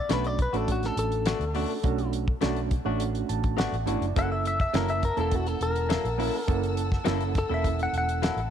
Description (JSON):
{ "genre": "straight-eighth soul blues", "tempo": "104 BPM", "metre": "4/4", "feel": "straight", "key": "unclear", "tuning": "A4 = 440 Hz", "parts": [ { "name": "direct-recorded clean electric guitar", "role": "melody", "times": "0.0-8.5 s", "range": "F#4 to F#5", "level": "-30 LUFS", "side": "left 2 dB", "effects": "none" }, { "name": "overdriven reed electric piano", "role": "accompaniment", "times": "0.1-8.2 s", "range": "A3 to A5", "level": "-32 LUFS", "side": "right 13 dB", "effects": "fast tremolo" }, { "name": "direct-recorded clean electric guitar", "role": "stabs", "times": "0.1-8.4 s", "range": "B2 to A4", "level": "-34 LUFS", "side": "left 11 dB", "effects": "none" }, { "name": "vintage muted fingered electric bass", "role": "bass", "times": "0.1-8.5 s", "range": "E1 to D2", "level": "-30 LUFS", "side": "equal", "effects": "none" }, { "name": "damped 70s drum kit", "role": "drums", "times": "0.1-8.5 s", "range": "hi-hat, kick drum, snare drum", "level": "-30 LUFS", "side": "equal", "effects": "none" }, { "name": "warm studio string section", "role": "sustained chords", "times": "4.1-8.5 s", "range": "F#5 to E6", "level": "-40 LUFS", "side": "left 2 dB", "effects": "none" } ], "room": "light reverb", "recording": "1960s-style stereo with parts hard left and right", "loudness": "-24 LUFS", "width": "side -9 dB against mid", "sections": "0.0-8.5 A section", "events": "clean electric guitar solo 0.0-8.5; reed electric piano fill 3.0-4.2", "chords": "0.0 Bm7; 4.2 F#7#9", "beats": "0.10 0.68 1.26 | 1.84 2.42 3.00 3.58 | 4.16 4.74 5.32 5.90 | 6.48 7.06 7.64 8.22" }